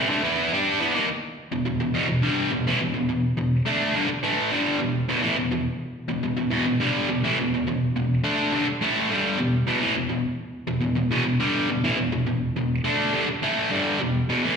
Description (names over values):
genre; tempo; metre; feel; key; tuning
rock; 104 BPM; 4/4; straight; E minor; A4 = 439 Hz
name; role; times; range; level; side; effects
distorted electric guitar; solo; 0.0-14.6 s; E2 to G4; -21 LUFS; equal; overdrive, slapback echo
room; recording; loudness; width
light reverb, digital ambience; live gig heard through the venue's PA, recital hall reverb; -21 LUFS; side -6 dB against mid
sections
0.0-1.1 A section; 1.1-14.6 B section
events
none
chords
0.0 N.C.; 1.1 Em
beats
0.51 | 1.08 1.65 2.22 2.80 | 3.37 3.94 4.51 5.09 | 5.66 6.23 6.81 7.38 | 7.96 8.53 9.11 9.68 | 10.26 10.83 11.41 11.99 | 12.56 13.14 13.72 14.30